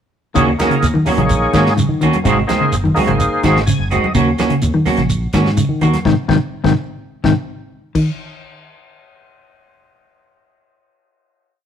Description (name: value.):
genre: afrobeat.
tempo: 126 BPM.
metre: 4/4.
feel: straight.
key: Eb dorian.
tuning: A4 = 440 Hz.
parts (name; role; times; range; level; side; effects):
tonewheel organ; accompaniment; 0.3-4.1 s; Bb3 to Ab5; -18 LUFS; equal; slow rotary speaker, overdrive, chorus vibrato.
mellow electric guitar; arpeggios; 0.4-8.1 s; Ab2 to Eb3; -17 LUFS; left 2 dB; none.
clean electric guitar; stabs; 0.4-6.0 s; Eb3 to Gb4; -19 LUFS; right 4 dB; harmonic tremolo.
fingered electric bass; bass; 0.4-5.9 s; Gb1 to Eb3; -20 LUFS; equal; none.
damped 70s drum kit; drums; 0.4-8.1 s; crash cymbal, hi-hat, kick drum, snare drum; -25 LUFS; equal; none.
shekere; percussion; 0.4-5.9 s; none; -22 LUFS; right 2 dB; none.
congas; percussion; 0.6-6.1 s; none; -24 LUFS; right 1 dB; none.
room: moderate stone room reverb, RT60 1.1 s.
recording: rough rehearsal-room recording, tube saturation.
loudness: -13 LUFS.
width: side -8 dB against mid.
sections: 0.4-8.0 groove; 8.0-11.7 final note.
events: tonewheel organ fill 3.4-4.1; band accent 6.0-8.0; drum fill 7.0-8.0.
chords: 0.4 Ebm7; 2.2 Ab7; 4.1 Ebm7; 6.0 Ab; 8.0 N.C..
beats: | 0.35 0.82 1.30 1.77 | 2.24 2.72 3.19 3.67 | 4.14 4.62 5.09 5.57 | 6.05 6.53 7.00 7.48 | 7.95.